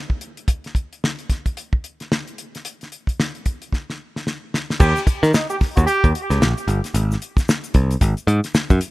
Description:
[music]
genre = funk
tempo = 111 BPM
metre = 4/4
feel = swing 60% on 16ths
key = Eb mixolydian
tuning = A4 = 440 Hz
[part]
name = damped 70s drum kit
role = drums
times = 0.1-8.9 s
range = crash cymbal, hi-hat, kick drum, snare drum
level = -20 LUFS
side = equal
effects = none
[part]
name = bright trombone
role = second line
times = 4.8-6.1 s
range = Eb4 to Bb4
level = -22 LUFS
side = right 2 dB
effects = tape echo
[part]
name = modern bright picked electric bass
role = bass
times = 4.8-8.8 s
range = G1 to Eb3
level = -17 LUFS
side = equal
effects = none
[part]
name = tube shaker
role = percussion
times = 4.8-8.9 s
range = none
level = -38 LUFS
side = left 5 dB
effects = none
[sound]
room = small room ambience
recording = rough home demo mix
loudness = -18 LUFS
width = side -19 dB against mid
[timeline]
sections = 0.0-4.8 A section; 4.8-8.9 B section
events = drum fill 3.7-4.8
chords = 0.0 N.C.; 4.8 Eb; 6.9 Ab

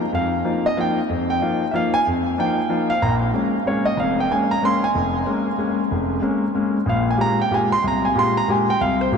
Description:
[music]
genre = jazz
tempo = 187 BPM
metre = 3/4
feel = swing 62% on 8ths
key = Bb dorian from 3.0 s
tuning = A4 = 438 Hz
[part]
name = warm concert grand piano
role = solo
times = 0.0-9.2 s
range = F1 to C6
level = -18 LUFS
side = equal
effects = ping-pong delay
[sound]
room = wet huge ambient reverb, RT60 8.3 s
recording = dreamy mix soaked in reverb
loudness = -18 LUFS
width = side -6 dB against mid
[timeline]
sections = 0.0-3.0 A section; 3.0-9.2 A section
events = none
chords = 0.0 Bbsus4/F; 3.0 Bbm7; 6.9 Fmadd9/Bb

